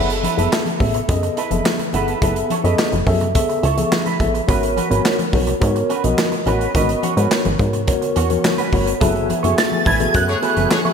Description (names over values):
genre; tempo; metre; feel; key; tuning
early-eighties boogie funk; 106 BPM; 4/4; straight; F# dorian; A4 = 440 Hz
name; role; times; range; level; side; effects
mellow tine electric piano; accompaniment; 0.0-10.9 s; B3 to F#5; -20 LUFS; left 2 dB; fast stereo tremolo, slapback echo
clean electric guitar; riff; 0.0-10.9 s; C#4 to C#5; -25 LUFS; right 6 dB; analog chorus, slapback echo
plucky analog bass; bass; 0.0-10.7 s; F#1 to G#2; -20 LUFS; equal; none
modern studio drum kit; drums; 0.1-10.9 s; handclaps, hi-hat, kick drum, snare drum; -21 LUFS; equal; none
congas; percussion; 0.2-10.9 s; none; -27 LUFS; left 5 dB; none
lush unison pad; sustained chords; 9.0-10.9 s; E3 to G#5; -28 LUFS; equal; chorus
shimmering bell with halo; melody; 9.6-10.9 s; F#6 to A6; -20 LUFS; right 2 dB; ensemble chorus, slapback echo
warm horn section; second line; 10.3-10.8 s; A3 to C#5; -24 LUFS; left 2 dB; slapback echo
room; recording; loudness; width
moderate lush hall reverb, RT60 2.0 s; big arena sound; -15 LUFS; side -6 dB against mid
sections
0.0-9.0 A section; 9.0-10.9 B section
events
none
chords
0.0 F#m11; 4.5 G#m11; 9.0 F#m11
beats
0.52 1.09 1.65 | 2.22 2.79 3.35 3.92 | 4.48 5.05 5.62 6.18 | 6.75 7.31 7.88 8.45 | 9.01 9.58 10.14 10.71